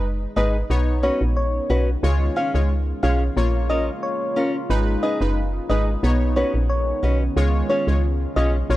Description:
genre	dancehall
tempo	90 BPM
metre	4/4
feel	straight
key	unclear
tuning	A4 = 440 Hz
part	synth brass stab	accompaniment	0.0-8.8 s	G#3 to C#5	-27 LUFS	equal	chorus
part	deep dark ambient pad	sustained chords	0.1-8.8 s	C#3 to B4	-31 LUFS	equal	chorus, built-in reverb
part	woody FM bass	bass	0.0-8.8 s	F#1 to C#2	-20 LUFS	equal	none
part	soft struck synth lead	melody	0.4-8.5 s	C#5 to E#5	-26 LUFS	left 1 dB	chorus
part	nylon-string guitar	arpeggios	0.4-8.6 s	C#4 to D#5	-26 LUFS	left 1 dB	none
room	digital ambience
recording	dry, gritty hardware recording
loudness	-19 LUFS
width	side -16 dB against mid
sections	0.0-8.8 A section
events	none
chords	0.0 G#m; 0.7 Badd9; 2.0 C#; 3.4 A#m; 4.7 G#m; 6.0 Badd9; 7.4 C#

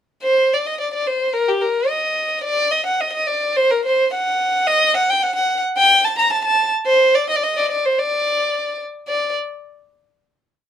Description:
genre	klezmer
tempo	109 BPM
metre	2/4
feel	straight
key	D phrygian dominant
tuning	A4 = 440 Hz
part	warm violin	solo	0.2-9.3 s	G4 to Bb5	-16 LUFS	equal	none
room	light reverb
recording	minimal, uncompressed stereo recording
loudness	-16 LUFS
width	side -9 dB against mid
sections	0.2-9.1 A section; 9.1-10.2 final note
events	none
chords	none

